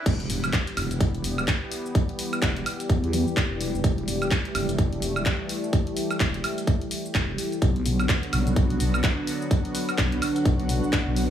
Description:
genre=bass house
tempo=127 BPM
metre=4/4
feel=swing 59% on 16ths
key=E minor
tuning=A4 = 440 Hz
part: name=swell and impact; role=sound effects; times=0.0-1.9 s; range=none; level=-37 LUFS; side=right 1 dB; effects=none
part: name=sweeping resonant pad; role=sustained chords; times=0.1-11.3 s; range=D3 to G4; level=-30 LUFS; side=left 1 dB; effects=chorus, sidechain pumping
part: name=vowel-sweep wobble bass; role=bass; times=0.1-11.3 s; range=E1 to E2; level=-26 LUFS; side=equal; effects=chorus, sidechain pumping
part: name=electronic kick drum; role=drums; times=0.1-11.0 s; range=none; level=-23 LUFS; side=equal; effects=none
part: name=garage drum kit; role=drums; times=0.1-11.3 s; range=crash cymbal, handclaps, hi-hat, shaker, woodblock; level=-29 LUFS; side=equal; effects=high-pass filter on snare, high-pass filter on hats, high-pass filter on perc, high-pass filter on cymbals
part: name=ethereal airy pad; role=texture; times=8.7-11.3 s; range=D4 to F#5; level=-31 LUFS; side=right 1 dB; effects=ensemble chorus, built-in reverb, sidechain pumping
room=light reverb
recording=high-pass filter, studio ambience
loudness=-22 LUFS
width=side -10 dB against mid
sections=0.1-11.3 A section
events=drop 0.1-11.3; impact 0.1-2.0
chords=0.1 Em; 7.6 Bm

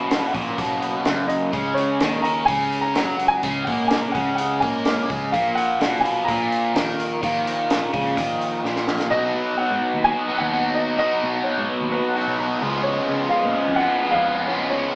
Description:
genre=indie rock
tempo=127 BPM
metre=4/4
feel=straight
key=unclear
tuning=A4 = 440 Hz
part: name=biting overdriven guitar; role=riff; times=0.0-15.0 s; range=F#2 to G#4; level=-25 LUFS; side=equal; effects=none
part: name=overdriven electric guitar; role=riff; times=0.0-15.0 s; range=F#2 to F#4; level=-24 LUFS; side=equal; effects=phaser
part: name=picked electric bass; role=bass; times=0.0-14.9 s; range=F#1 to C#3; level=-32 LUFS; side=equal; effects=none
part: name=compact cocktail drum kit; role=drums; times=0.1-9.1 s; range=hi-hat, kick drum, snare drum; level=-26 LUFS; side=equal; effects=none
part: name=dark upright piano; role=melody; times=1.3-15.0 s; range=B4 to A#5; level=-22 LUFS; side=equal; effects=none
room=moderate small room reverb, RT60 0.5 s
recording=band playing live in one room, small speaker sound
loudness=-19 LUFS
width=side -28 dB against mid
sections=0.0-9.1 A section; 9.1-15.0 B section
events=drum fill 8.6-9.1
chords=0.0 F#; 1.5 C#5; 5.3 A#5; 9.1 B; 12.6 C#7(no3)

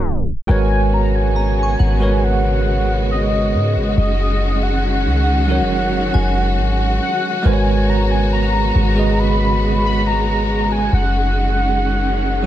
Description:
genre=R&B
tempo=69 BPM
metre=4/4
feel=straight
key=G# minor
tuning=A4 = 439 Hz
part: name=bell-like tine electric piano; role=accompaniment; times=0.0-12.5 s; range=F#3 to C#6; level=-21 LUFS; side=right 4 dB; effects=medium stereo tremolo
part: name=dark studio string section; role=sustained chords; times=0.0-12.5 s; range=C#3 to F#4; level=-22 LUFS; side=equal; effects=none
part: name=clean electric guitar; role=arpeggios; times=0.0-0.5 s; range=F#4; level=-37 LUFS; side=left 6 dB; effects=none
part: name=warm 808-style bass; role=bass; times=0.0-12.5 s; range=F#1 to G#2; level=-18 LUFS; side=equal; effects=none
part: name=warm velvety synth lead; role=melody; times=0.1-12.5 s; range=D#5 to B5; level=-22 LUFS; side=equal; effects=chorus, ping-pong delay
part: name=glassy synth bell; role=texture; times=1.4-7.4 s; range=F#5 to C#6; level=-32 LUFS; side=equal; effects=chorus, tremolo, ping-pong delay
room=light reverb, digital ambience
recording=tape stop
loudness=-14 LUFS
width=side -12 dB against mid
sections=0.5-12.5 A section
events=tine electric piano fill 0.0-0.5; tape stop 0.0-0.5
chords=0.5 G#m11; 4.0 D#m7/F#; 7.4 G#m11; 10.9 D#m7/F#

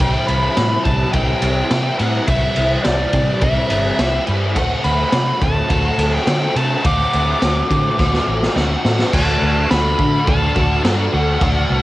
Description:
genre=rock, shoegaze and dream pop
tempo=105 BPM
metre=4/4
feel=straight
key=D mixolydian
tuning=A4 = 440 Hz
part: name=nasal lead guitar with a parked wah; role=melody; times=0.0-11.8 s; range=D5 to D6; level=-21 LUFS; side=equal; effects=overdrive, cassette tape, analog delay
part: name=overdriven electric guitar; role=riff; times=0.0-11.8 s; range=C3 to F#4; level=-20 LUFS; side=equal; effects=ensemble chorus, cassette tape
part: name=vintage muted fingered electric bass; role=bass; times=0.0-11.8 s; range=G1 to D3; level=-20 LUFS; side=equal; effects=none
part: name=raw garage drum kit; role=drums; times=0.0-11.5 s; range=crash cymbal, kick drum, ride cymbal, snare drum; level=-20 LUFS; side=equal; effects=cassette tape
room=studio ambience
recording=home recording on cassette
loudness=-14 LUFS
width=side -17 dB against mid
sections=0.0-9.1 A section; 9.1-11.8 B section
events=drum fill 8.0-9.1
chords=0.0 C; 4.6 D7; 9.1 D

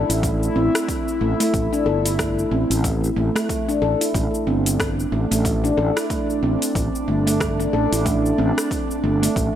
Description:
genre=organic downtempo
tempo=92 BPM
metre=4/4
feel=swing 58% on 16ths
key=A minor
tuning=A4 = 440 Hz
part: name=airy breathy pad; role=sustained chords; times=0.0-9.6 s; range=A3 to E4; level=-25 LUFS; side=equal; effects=chorus, sidechain pumping
part: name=handpan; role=arpeggios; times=0.0-9.4 s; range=A3 to A4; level=-22 LUFS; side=equal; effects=tape echo
part: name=fretless electric bass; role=bass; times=0.0-9.5 s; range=G1 to A1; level=-22 LUFS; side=equal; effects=none
part: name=deep house drum kit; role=drums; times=0.1-9.5 s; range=cabasa, hi-hat, rim click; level=-27 LUFS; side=left 1 dB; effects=overdrive
part: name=electronic kick drum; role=drums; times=0.2-9.5 s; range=none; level=-28 LUFS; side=equal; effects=overdrive
room=light reverb, digital ambience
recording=dry, gritty hardware recording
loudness=-18 LUFS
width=side -10 dB against mid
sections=0.0-9.6 A section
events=none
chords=0.0 A7(no3)

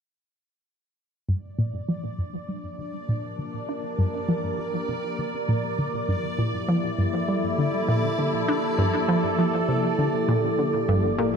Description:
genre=ambient, sequencer-driven space music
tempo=100 BPM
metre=4/4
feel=straight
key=G dorian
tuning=A4 = 440 Hz
part: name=sweeping resonant pad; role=sustained chords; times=1.3-11.4 s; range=F3 to Bb4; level=-26 LUFS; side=equal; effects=chorus
part: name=analog pluck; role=riff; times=1.3-11.3 s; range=G2 to D4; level=-25 LUFS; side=equal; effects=chorus, tape echo
part: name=bubbling stepped-filter texture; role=texture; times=1.3-10.9 s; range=D5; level=-33 LUFS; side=right 1 dB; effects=chorus, built-in reverb
part: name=fat analog bass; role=bass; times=10.9-11.4 s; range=G1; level=-46 LUFS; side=equal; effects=none
room=wet concert hall reverb, RT60 2.4 s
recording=none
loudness=-23 LUFS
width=side -6 dB against mid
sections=1.3-10.9 A section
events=fade-in on analog synth pad 1.3-10.9; fade-in on synth texture 1.3-10.9; filter sweep on synth arpeggio sound 1.3-10.9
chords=1.3 Gm7

